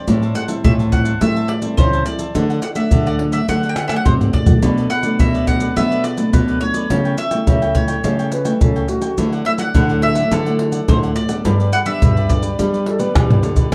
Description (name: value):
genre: samba and choro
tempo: 106 BPM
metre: 4/4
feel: straight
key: G major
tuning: A4 = 444 Hz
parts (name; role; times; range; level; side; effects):
- mandolin; melody; 0.0-13.4 s; A4 to G5; -25 LUFS; equal; none
- cavaquinho; accompaniment; 0.0-13.7 s; D4 to A5; -32 LUFS; equal; none
- nylon-string guitar; accompaniment; 0.0-13.7 s; F#2 to E4; -25 LUFS; equal; none
- nylon-string guitar; bass; 0.1-13.7 s; G2 to B3; -22 LUFS; equal; none
- maracas, surdo, pandeiro and tamborim; percussion; 0.1-13.7 s; none; -20 LUFS; equal; none
- baroque flute; second line; 8.3-9.3, 12.9-13.7 s; F#4 to B4; -26 LUFS; equal; none
room: moderate small room ambience, RT60 0.5 s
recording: dark, warm production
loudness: -17 LUFS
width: mono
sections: 0.0-13.7 A section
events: drum fill 3.8-4.6, 13.2-13.7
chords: 0.1 Am7; 2.4 D; 4.6 Bm7; 6.9 A7/C#; 9.2 Dadd9; 11.5 G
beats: | 0.08 0.65 1.21 1.78 | 2.35 2.92 3.49 4.06 | 4.63 5.20 5.76 6.33 | 6.90 7.47 8.04 8.61 | 9.18 9.75 10.32 10.88 | 11.45 12.02 12.59 13.15 | 13.72